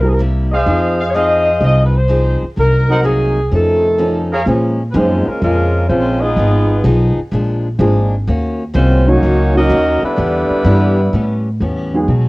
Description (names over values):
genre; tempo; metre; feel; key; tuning
jazz, big band swing; 126 BPM; 4/4; swing 69% on 8ths; F minor; A4 = 435 Hz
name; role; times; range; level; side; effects
bright saxophone section; melody; 0.0-11.5 s; G3 to F5; -16 LUFS; equal; cassette tape
picked steel-string acoustic guitar; accompaniment; 0.0-12.3 s; A2 to A4; -22 LUFS; left 2 dB; cassette tape
warm upright piano; accompaniment; 0.0-12.1 s; Eb3 to Bb4; -18 LUFS; right 1 dB; cassette tape
upright bass; bass; 0.0-12.3 s; Ab1 to B2; -15 LUFS; equal; none
warm trumpet section; stabs; 0.5-4.4 s; Ab4 to Gb5; -17 LUFS; equal; cassette tape
mellow trombone section; second line; 3.5-11.5 s; C3 to Eb4; -20 LUFS; right 2 dB; cassette tape
room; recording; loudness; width
moderate studio reverb, RT60 0.6 s; home recording on cassette; -12 LUFS; side -21 dB against mid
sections
0.0-4.5 A section; 4.5-12.3 B section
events
none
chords
0.0 C7; 0.7 Fm7; 2.6 Cm7b5; 3.5 F7b13; 4.5 Bbm7; 6.4 Fm7b5; 7.3 Bb7; 8.3 Ebm7; 10.2 Em7; 11.1 A9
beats
0.19 | 0.67 1.14 1.62 2.09 | 2.57 3.04 3.52 3.99 | 4.47 4.95 5.42 5.89 | 6.37 6.85 7.32 7.80 | 8.27 8.75 9.22 9.70 | 10.18 10.65 11.13 11.61 | 12.08